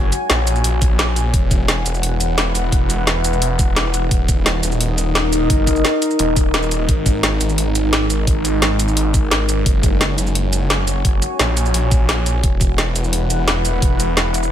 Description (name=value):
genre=dark technical drum and bass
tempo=173 BPM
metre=4/4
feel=straight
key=unclear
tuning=A4 = 440 Hz
part: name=deep dark ambient pad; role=sustained chords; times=0.0-14.5 s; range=G#3 to G#5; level=-22 LUFS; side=left 1 dB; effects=chorus, built-in reverb, sidechain pumping
part: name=snarling distorted saw bass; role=bass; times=0.0-14.5 s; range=D#1 to A#1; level=-19 LUFS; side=equal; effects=distortion, overdrive, sidechain pumping
part: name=drum and bass drum kit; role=drums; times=0.1-14.5 s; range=hi-hat, shaker, snare drum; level=-20 LUFS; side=equal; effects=overdrive, small room ambience
part: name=electronic kick drum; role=drums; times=0.8-13.9 s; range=none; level=-17 LUFS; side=equal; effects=overdrive, small room ambience
room=digital ambience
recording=none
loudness=-14 LUFS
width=side -10 dB against mid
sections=0.0-14.5 A section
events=break 6.5-6.9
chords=0.0 F#add9; 1.3 Esus2; 4.1 D#5; 6.9 G#sus2; 9.7 F#add9; 12.4 Esus2